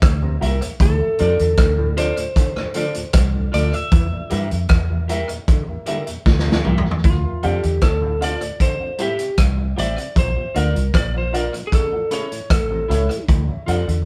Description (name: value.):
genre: roots reggae.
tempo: 77 BPM.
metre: 4/4.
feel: straight.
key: D minor.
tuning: A4 = 444 Hz.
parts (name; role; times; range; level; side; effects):
vintage muted fingered electric bass; bass; 0.0-14.0 s; A1 to G2; -23 LUFS; equal; none.
vintage drum kit; drums; 0.0-14.1 s; hi-hat, kick drum, rim click, snare drum, toms; -21 LUFS; equal; none.
mellow tonewheel organ; accompaniment; 0.2-13.8 s; D2 to F4; -35 LUFS; equal; slow rotary speaker, tape echo.
auto-wah clav; arpeggios; 0.2-14.0 s; A2 to E3; -34 LUFS; equal; none.
clean electric guitar; accompaniment; 0.4-13.9 s; E4 to E5; -32 LUFS; equal; none.
dark upright piano; stabs; 0.4-13.9 s; D4 to F5; -31 LUFS; equal; tape echo.
lightly driven lead guitar; melody; 0.8-13.2 s; F4 to E5; -26 LUFS; equal; none.
room: moderate studio reverb, RT60 0.6 s.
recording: band playing live in one room.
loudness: -19 LUFS.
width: mono.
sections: 0.0-7.0 A section; 7.0-14.1 B section.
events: drum fill 6.3-7.0; lead electric guitar solo 7.0-14.1.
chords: 0.0 Edim; 0.8 Dm; 3.9 Edim; 7.0 Dm; 8.6 C; 10.2 Bb; 11.7 A; 13.3 Dm.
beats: 0.02 | 0.80 1.58 2.36 3.14 | 3.92 4.70 5.48 6.26 | 7.04 7.83 8.61 9.38 | 10.17 10.95 11.73 12.51 | 13.29.